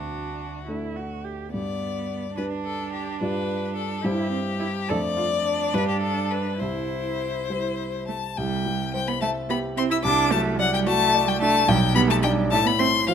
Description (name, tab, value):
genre	quick classical-period movement for piano trio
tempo	72 BPM (dotted quarters)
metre	6/8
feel	rubato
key	G major, C major from 4.9 s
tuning	A4 = 440 Hz
part	rich violin	melody	0.0-13.1 s	F#4 to E6	-25 LUFS	left 8 dB	none
part	warm cello	second line	0.0-13.1 s	F3 to A4	-28 LUFS	right 6 dB	none
part	warm grand piano	accompaniment	0.0-13.1 s	B1 to E5	-26 LUFS	right 1 dB	none
room	moderate recital hall reverb, RT60 1.6 s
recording	close, detailed microphones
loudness	-22 LUFS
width	side -8 dB against mid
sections	0.0-8.4 A section; 8.4-13.1 B section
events	none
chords	0.0 D; 1.5 G; 3.2 G7; 4.0 C/G; 4.9 Dm/F; 5.7 G5; 6.6 C; 10.0 D7/C; 11.7 G/B; 12.5 F/A